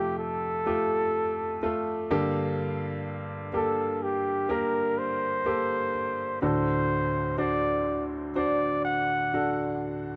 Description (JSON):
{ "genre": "pop", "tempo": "63 BPM", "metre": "4/4", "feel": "straight", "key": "G minor", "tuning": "A4 = 440 Hz", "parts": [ { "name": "clear flugelhorn", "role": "melody", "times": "0.0-9.8 s", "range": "G4 to F#5", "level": "-31 LUFS", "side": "equal", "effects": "tape echo" }, { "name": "clear baby grand piano", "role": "accompaniment", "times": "0.0-10.2 s", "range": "D2 to C5", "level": "-31 LUFS", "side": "equal", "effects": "none" } ], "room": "light reverb", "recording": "dark, warm production", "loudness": "-28 LUFS", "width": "mono", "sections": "0.0-10.2 A section", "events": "none", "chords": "0.0 Fadd9; 2.1 Gmadd9; 6.4 D" }